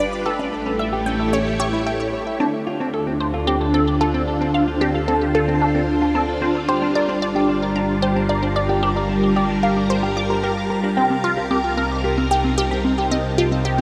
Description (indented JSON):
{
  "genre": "ambient, sequencer-driven space music",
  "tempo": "112 BPM",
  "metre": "4/4",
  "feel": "straight",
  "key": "D phrygian",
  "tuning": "A4 = 440 Hz",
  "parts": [
    { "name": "phased string machine", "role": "sustained chords", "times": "0.0-13.8 s", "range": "C3 to C#5", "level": "-23 LUFS", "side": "equal", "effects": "ensemble chorus, phaser" },
    { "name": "clean electric guitar", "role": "arpeggios", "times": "0.0-13.8 s", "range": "C4 to G5", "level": "-28 LUFS", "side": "equal", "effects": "tape echo" },
    { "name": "resonant blip pluck", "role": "riff", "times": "0.0-13.8 s", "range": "C4 to D6", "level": "-26 LUFS", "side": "equal", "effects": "phaser, tape echo" },
    { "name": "analog drone", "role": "bass", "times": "0.0-13.8 s", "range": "G1 to D2", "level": "-30 LUFS", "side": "equal", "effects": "chorus" },
    { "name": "wind-like tuned noise texture", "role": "texture", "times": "4.7-13.8 s", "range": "A5", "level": "-40 LUFS", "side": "equal", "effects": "none" }
  ],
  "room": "wet huge ambient reverb, RT60 7.6 s",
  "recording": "none",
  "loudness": "-20 LUFS",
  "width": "mono",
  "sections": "0.0-2.4 A section; 2.4-13.8 B section",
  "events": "none",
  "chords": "0.3 A7; 2.4 Dm7; 6.7 Gm7; 11.0 Cm7",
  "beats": "| 0.26 0.79 1.33 1.86 | 2.40 2.94 3.47 4.01 | 4.54 5.08 5.62 6.15 | 6.69 7.22 7.76 8.29 | 8.83 9.37 9.90 10.44 | 10.97 11.51 12.04 12.58 | 13.12 13.65"
}